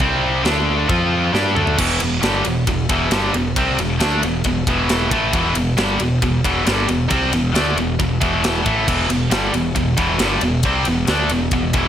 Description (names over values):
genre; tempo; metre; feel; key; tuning
heavy metal; 135 BPM; 4/4; straight; E phrygian; A4 = 439 Hz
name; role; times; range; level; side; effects
heavy high-gain guitar; riff; 0.0-11.9 s; E2 to G4; -17 LUFS; equal; distortion
growling picked electric bass; bass; 0.0-11.9 s; E1 to G2; -23 LUFS; equal; overdrive
tight metal drum kit; drums; 0.0-11.8 s; china cymbal, crash cymbal, kick drum, ride cymbal, snare drum, toms; -22 LUFS; equal; none
room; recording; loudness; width
little or no reverb; none; -15 LUFS; side -10 dB against mid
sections
0.0-1.8 A section; 1.8-11.9 B section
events
drum fill 1.3-1.8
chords
0.0 C5; 0.4 D5; 0.9 F5; 1.3 G5; 1.8 Em